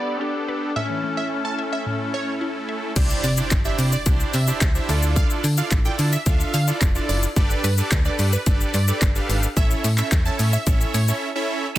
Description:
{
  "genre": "dance-pop",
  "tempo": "109 BPM",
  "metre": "4/4",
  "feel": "straight",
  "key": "unclear",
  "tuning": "A4 = 440 Hz",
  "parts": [
    { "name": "mellow duduk", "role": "melody", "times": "0.0-2.7 s", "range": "B3 to D4", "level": "-28 LUFS", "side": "left 3 dB", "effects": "low-pass filter, dub echo" },
    { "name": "plucky unison lead", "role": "melody", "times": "0.0-11.2 s", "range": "B4 to A5", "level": "-31 LUFS", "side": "right 3 dB", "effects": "sidechain pumping, low-pass filter, dub echo" },
    { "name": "big bright polysynth", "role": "accompaniment", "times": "0.0-11.7 s", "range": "A3 to F5", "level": "-26 LUFS", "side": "right 2 dB", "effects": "sidechain pumping, low-pass filter" },
    { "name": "wide unison pluck", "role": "arpeggios", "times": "0.2-2.8 s", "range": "A2 to E5", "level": "-32 LUFS", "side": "left 2 dB", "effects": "sidechain pumping, low-pass filter, dub echo" },
    { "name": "slap-like FM bass", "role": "bass", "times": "3.0-11.1 s", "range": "F1 to D3", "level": "-21 LUFS", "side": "equal", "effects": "sidechain pumping" },
    { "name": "house drum kit", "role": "drums", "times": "3.0-11.2 s", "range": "crash cymbal, handclaps, hi-hat, kick drum, shaker", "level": "-22 LUFS", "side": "equal", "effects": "none" },
    { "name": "impact", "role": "sound effects", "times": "3.1-5.2 s", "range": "none", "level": "-35 LUFS", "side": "equal", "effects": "none" }
  ],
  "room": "digital ambience",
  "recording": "dense, heavily limited modern master",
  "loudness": "-19 LUFS",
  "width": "side -14 dB against mid",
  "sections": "0.0-3.0 A section; 3.0-11.8 B section",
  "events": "drop 3.0-11.8; impact 3.0-5.2; break 11.2-11.8",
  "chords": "0.0 Gadd9; 0.8 A; 3.0 Cadd9; 4.9 Dmadd9; 7.4 Gadd9; 9.6 A"
}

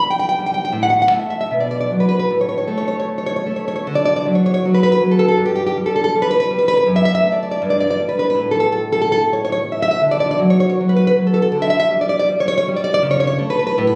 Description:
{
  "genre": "romantic piece for solo classical guitar",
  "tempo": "74-83 BPM",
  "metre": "2/4",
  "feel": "rubato",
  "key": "D major",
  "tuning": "A4 = 440 Hz",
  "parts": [
    { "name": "nylon-string guitar", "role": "solo", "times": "0.0-14.0 s", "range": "F#2 to G5", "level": "-17 LUFS", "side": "equal", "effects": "none" }
  ],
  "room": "moderate recital hall reverb, RT60 1.6 s",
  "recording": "recorded on a phone in the room, studio reverb",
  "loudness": "-17 LUFS",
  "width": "mono",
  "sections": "0.0-3.9 A section; 3.9-14.0 B section",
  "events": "none",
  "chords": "0.0 N.C.; 1.5 B5; 2.3 N.C.; 3.9 D; 5.4 N.C.; 6.9 F#m7; 7.6 N.C.; 10.0 D; 11.5 Dsus24; 13.0 A/C#"
}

